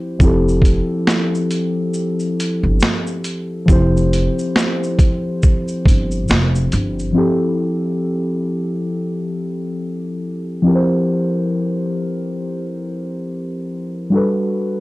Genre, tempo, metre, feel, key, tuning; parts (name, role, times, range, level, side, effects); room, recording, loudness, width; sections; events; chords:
lo-fi hip hop; 69 BPM; 4/4; swing 58% on 16ths; F major; A4 = 440 Hz
muted felt-like synth keys; accompaniment; 0.0-14.8 s; F3 to C5; -18 LUFS; left 1 dB; chorus, cassette tape
upright bass; bass; 0.2-7.1 s; F1 to G1; -18 LUFS; equal
boom bap sampler-style drum kit; drums; 0.2-7.2 s; finger snaps, hi-hat, kick drum, shaker, snare drum; -15 LUFS; equal
light reverb; dark, warm production; -16 LUFS; side -19 dB against mid
0.0-7.2 A section; 7.2-14.8 B section
0.0 Fmaj9; 14.1 Gmaj9